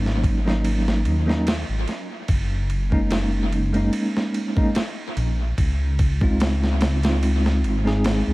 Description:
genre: trip hop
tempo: 73 BPM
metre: 4/4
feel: swing 54% on 16ths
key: unclear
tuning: A4 = 440 Hz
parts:
  - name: bell-like tine electric piano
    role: accompaniment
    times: 0.0-8.3 s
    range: Gb3 to Ab4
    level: -24 LUFS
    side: equal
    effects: tremolo, low-pass filter, tape echo
  - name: dark detuned saw bass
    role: bass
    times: 0.0-8.3 s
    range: Gb1 to Eb2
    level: -22 LUFS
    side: equal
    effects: none
  - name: dusty soul sampler-style drum kit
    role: drums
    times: 0.1-8.3 s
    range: kick drum, ride cymbal, snare drum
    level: -24 LUFS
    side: equal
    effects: overdrive, dub echo
room: light reverb, digital ambience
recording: echo-heavy mix, vinyl crackle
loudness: -19 LUFS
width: side -21 dB against mid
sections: 0.0-8.3 A section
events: none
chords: 0.0 Ab9sus4; 2.3 Gb6; 5.6 Dbmaj9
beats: 0.65 1.47 | 2.29 3.12 3.94 4.76 | 5.58 6.40 7.23 8.05

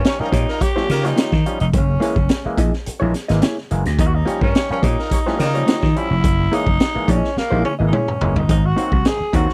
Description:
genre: funk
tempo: 107 BPM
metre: 4/4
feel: straight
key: Eb mixolydian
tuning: A4 = 441 Hz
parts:
  - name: growling tenor saxophone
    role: melody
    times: 0.0-9.5 s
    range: Bb3 to Ab4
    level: -25 LUFS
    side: equal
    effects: none
  - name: clear horn section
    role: second line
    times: 0.0-5.6 s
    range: G3 to Db5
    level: -29 LUFS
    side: equal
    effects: none
  - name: raw garage drum kit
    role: drums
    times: 0.0-9.5 s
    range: hi-hat, kick drum, snare drum, toms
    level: -22 LUFS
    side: equal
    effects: none
  - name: overdriven clav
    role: stabs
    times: 0.1-9.5 s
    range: Ab2 to Db4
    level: -30 LUFS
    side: equal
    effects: phaser
  - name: vintage slap bass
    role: bass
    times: 0.2-9.5 s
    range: F1 to Eb3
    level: -21 LUFS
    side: equal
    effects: none
  - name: vintage hollow-body jazz guitar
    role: accompaniment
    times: 0.3-9.5 s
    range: Bb3 to Eb5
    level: -25 LUFS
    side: equal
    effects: none
room: little or no reverb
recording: dry, close 1970s-style studio recording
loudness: -18 LUFS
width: mono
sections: 0.0-8.5 A section; 8.5-9.5 B section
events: drum fill 7.4-8.5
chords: 0.0 Eb9; 1.7 Gb9; 4.0 Eb9; 6.2 Gb9; 8.5 Ab9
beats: 0.04 0.61 1.17 | 1.73 2.30 2.86 3.42 | 3.98 4.55 5.11 5.67 | 6.24 6.80 7.36 7.93 | 8.49 9.05

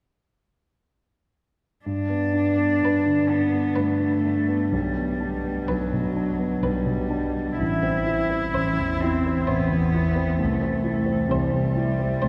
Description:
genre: classical, slow romantic movement for piano trio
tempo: 64 BPM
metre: 3/4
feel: rubato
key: G major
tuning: A4 = 440 Hz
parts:
  - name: warm cello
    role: second line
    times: 1.9-12.3 s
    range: F#3 to E4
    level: -28 LUFS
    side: equal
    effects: none
  - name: dark concert grand piano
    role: accompaniment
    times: 1.9-12.3 s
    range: A1 to E4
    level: -25 LUFS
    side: equal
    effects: none
  - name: warm violin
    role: melody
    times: 2.8-12.3 s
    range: B4 to C5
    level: -37 LUFS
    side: equal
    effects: none
room: wet cathedral reverb, RT60 5.6 s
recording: heard from further back in the room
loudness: -23 LUFS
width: mono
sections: 1.9-12.3 A section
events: none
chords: 1.9 G; 4.7 G/B; 7.6 Am; 10.4 Am/C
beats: | 1.86 2.82 3.76 | 4.72 5.69 6.63 | 7.61 8.55 9.48 | 10.40 11.31 12.23

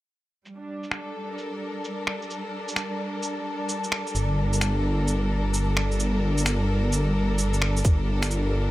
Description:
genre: future garage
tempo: 130 BPM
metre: 4/4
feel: swing 64% on 16ths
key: G minor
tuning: A4 = 440 Hz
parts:
  - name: rich symphonic string section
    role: sustained chords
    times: 0.5-8.7 s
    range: G3 to Bb4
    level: -30 LUFS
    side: equal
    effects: sidechain pumping
  - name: electronic shaker and finger snaps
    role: drums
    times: 0.5-8.4 s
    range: none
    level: -29 LUFS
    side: equal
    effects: low-pass filter on perc, small room ambience, low-pass filter on snare
  - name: wind-like tuned noise texture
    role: texture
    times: 1.5-7.9 s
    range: A5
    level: -38 LUFS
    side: left 3 dB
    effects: built-in reverb
  - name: swelling detuned saw bass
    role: bass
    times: 4.1-8.7 s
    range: G1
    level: -23 LUFS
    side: equal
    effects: sidechain pumping
  - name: electronic kick drum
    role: drums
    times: 7.8-8.0 s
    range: none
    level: -20 LUFS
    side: equal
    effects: small room ambience
room: light reverb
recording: none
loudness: -23 LUFS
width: side -16 dB against mid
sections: 0.5-7.8 A section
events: none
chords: 0.5 Gm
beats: | 0.46 0.92 1.38 1.84 | 2.31 2.77 3.23 3.69 | 4.15 4.61 5.08 5.54 | 6.00 6.46 6.92 7.38 | 7.84 8.31

